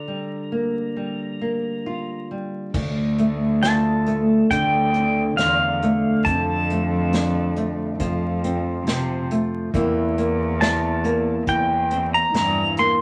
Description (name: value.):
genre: acoustic folk-pop ballad.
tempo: 69 BPM.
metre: 4/4.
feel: straight.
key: D minor.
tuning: A4 = 441 Hz.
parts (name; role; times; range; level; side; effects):
pedal steel guitar; melody; 0.0-13.0 s; F5 to C6; -24 LUFS; equal; none.
nylon-string guitar; accompaniment; 0.0-13.0 s; D2 to F4; -25 LUFS; equal; none.
warm cello; bass; 2.7-12.7 s; D2 to C3; -27 LUFS; equal; none.
unplugged drum kit; drums; 2.7-13.0 s; crash cymbal, hi-hat, kick drum, snare drum; -30 LUFS; equal; none.
room: moderate studio reverb, RT60 0.6 s.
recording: vinyl crackle.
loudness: -22 LUFS.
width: mono.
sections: 0.0-2.7 A section; 2.7-13.0 B section.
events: none.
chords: 0.0 Gm7; 2.7 Dm7; 6.3 F6; 9.7 C7/E.